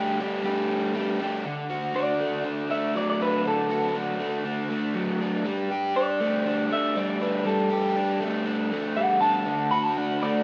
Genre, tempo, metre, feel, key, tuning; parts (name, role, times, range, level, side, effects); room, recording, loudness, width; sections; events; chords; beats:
rock; 120 BPM; 4/4; straight; D major; A4 = 439 Hz
electric guitar through a small old amp; melody; 0.0-10.4 s; A4 to B5; -29 LUFS; equal; subtle chorus, digital delay
raw garage guitar; riff; 0.0-10.4 s; D3 to G4; -28 LUFS; equal; overdrive, spring reverb
moderate lush hall reverb, RT60 3.1 s; rough home demo mix; -26 LUFS; mono
0.0-1.4 A section; 1.4-10.4 B section
clean electric guitar solo 1.4-10.4
0.0 Gsus2; 1.4 D; 5.5 Gsus2; 9.5 D
0.45 0.95 | 1.45 1.95 2.45 2.95 | 3.45 3.95 4.45 4.95 | 5.45 5.95 6.45 6.95 | 7.45 7.95 8.46 8.96 | 9.46 9.96